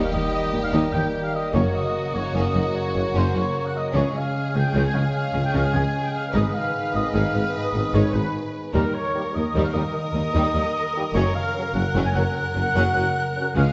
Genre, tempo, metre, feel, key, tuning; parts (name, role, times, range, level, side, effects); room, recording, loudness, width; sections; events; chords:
cinematic; 100 BPM (dotted quarters); 12/8; straight; A4 = 440 Hz
rich symphonic violin section; melody; 0.0-13.7 s; Gb4 to Cb5; -35 LUFS; equal
flute section; second line; 0.0-13.7 s; Bb5 to Ab6; -34 LUFS; equal
mellow oboe; second line; 0.0-13.7 s; Bb4 to Ab5; -35 LUFS; equal
warm symphonic violin section; second line; 0.0-13.7 s; Db4 to Eb4; -36 LUFS; equal
warm symphonic viola section; accompaniment; 0.0-13.7 s; Gb3 to Bb3; -34 LUFS; equal
clear trombone section; sustained chords; 0.0-13.5 s; Db3 to Ab3; -36 LUFS; equal
mellow French horn section; sustained chords; 0.0-13.4 s; Bb3 to Bb4; -34 LUFS; equal
concert harp; arpeggios; 0.0-13.7 s; Gb2 to Eb5; -34 LUFS; equal
warm trumpet section; stabs; 0.0-13.7 s; Bb4 to Ab5; -32 LUFS; equal
rich symphonic double bass section; bass; 0.1-13.6 s; Gb1 to Eb2; -31 LUFS; equal
warm studio cello section; bass; 0.1-13.6 s; Db2 to Db3; -30 LUFS; equal
warm tuba; bass; 0.1-13.6 s; Gb1 to Eb2; -32 LUFS; equal
wet scoring stage reverb, RT60 1.6 s; nothing above 7.9 kHz; -23 LUFS; mono
0.0-13.7 A section
0.0 Eb; 1.5 Gb; 4.0 Db; 6.3 Abm; 8.7 Eb; 11.1 Gb